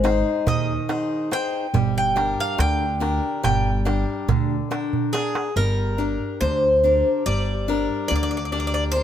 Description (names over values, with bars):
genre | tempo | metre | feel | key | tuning
greek folk, Greek bouzouki band | 141 BPM (eighths) | 9/8 | straight | G phrygian | A4 = 440 Hz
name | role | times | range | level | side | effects
Greek bouzouki | melody | 0.0-9.0 s | Ab4 to G5 | -23 LUFS | equal | none
picked swing-style acoustic guitar | accompaniment | 0.0-9.0 s | D3 to G5 | -26 LUFS | left 4 dB | none
upright bass | bass | 0.0-9.0 s | G1 to Eb2 | -24 LUFS | equal | none
darbuka | percussion | 0.0-5.5 s | none | -24 LUFS | right 8 dB | none
room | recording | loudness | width
moderate plate reverb, RT60 2.4 s | none | -20 LUFS | side -10 dB against mid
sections
0.0-5.6 A section; 5.6-9.0 B section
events
drum fill 4.9-5.6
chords
0.0 Ab; 1.7 Gm